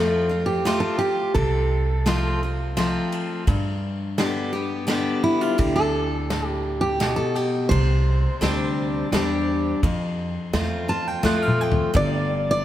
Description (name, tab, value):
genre	honky-tonk and classic country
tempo	85 BPM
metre	3/4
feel	straight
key	unclear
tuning	A4 = 440 Hz
part	picked steel-string acoustic guitar	melody	0.0-12.6 s	E4 to A5	-24 LUFS	equal	none
part	picked steel-string acoustic guitar	accompaniment	0.0-12.6 s	F2 to G4	-25 LUFS	left 2 dB	none
part	upright bass	bass	0.0-12.6 s	G1 to G2	-26 LUFS	right 1 dB	none
part	unplugged drum kit	drums	0.7-12.1 s	kick drum, ride cymbal, snare drum, toms	-28 LUFS	equal	none
room	moderate plate reverb, RT60 2.4 s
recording	heard from further back in the room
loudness	-20 LUFS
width	side -12 dB against mid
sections	0.0-11.9 A section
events	steel-string acoustic guitar solo 0.0-11.9; drum fill 11.2-11.9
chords	0.0 F; 3.5 G; 7.7 Csus2; 9.8 F; 11.9 G5